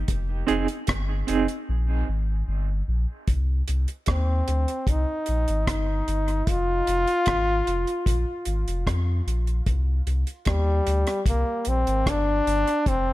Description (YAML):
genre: dub reggae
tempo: 75 BPM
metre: 4/4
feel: straight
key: C minor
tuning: A4 = 441 Hz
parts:
  - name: warm sub bass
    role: bass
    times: 0.0-13.1 s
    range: F1 to F2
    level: -24 LUFS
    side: equal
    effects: none
  - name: deep reggae drum kit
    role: drums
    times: 0.1-13.1 s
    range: hi-hat, kick drum, rim click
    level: -27 LUFS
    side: equal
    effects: none
  - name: mellow electric guitar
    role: accompaniment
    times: 0.5-1.5 s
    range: C4 to Ab4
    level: -27 LUFS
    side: right 6 dB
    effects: tremolo, dub echo
  - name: clear trombone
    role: melody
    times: 4.1-13.1 s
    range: G3 to F4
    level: -25 LUFS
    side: left 1 dB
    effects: dub echo
room: studio reverb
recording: none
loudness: -22 LUFS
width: side -16 dB against mid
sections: 0.0-13.1 A section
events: drums muted 1.7-3.3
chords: 0.1 Fm7; 1.7 Gm; 3.3 Cm; 6.5 Fm; 8.1 Bb5; 9.7 Cm